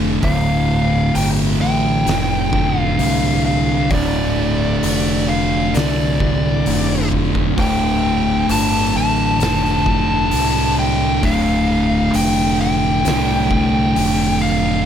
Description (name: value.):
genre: stoner and doom metal.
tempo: 66 BPM.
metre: 4/4.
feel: straight.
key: D minor.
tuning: A4 = 440 Hz.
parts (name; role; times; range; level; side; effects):
thick fuzz guitar; riff; 0.0-14.9 s; D2 to D3; -21 LUFS; left 10 dB; distortion.
thick fuzz guitar; riff; 0.0-14.9 s; D2 to D3; -20 LUFS; right 8 dB; distortion.
growling fingered electric bass; bass; 0.0-14.8 s; D1 to C2; -22 LUFS; equal; overdrive.
fuzz lead guitar; melody; 0.2-14.9 s; D5 to A5; -21 LUFS; left 1 dB; distortion.
oversized low-tuned drum kit; drums; 0.2-14.2 s; hi-hat, kick drum, snare drum; -24 LUFS; equal; none.
room: light reverb.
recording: none.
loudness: -14 LUFS.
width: side -9 dB against mid.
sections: 0.0-14.9 A section.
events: drum fill 7.1-7.6.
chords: 0.0 Dm.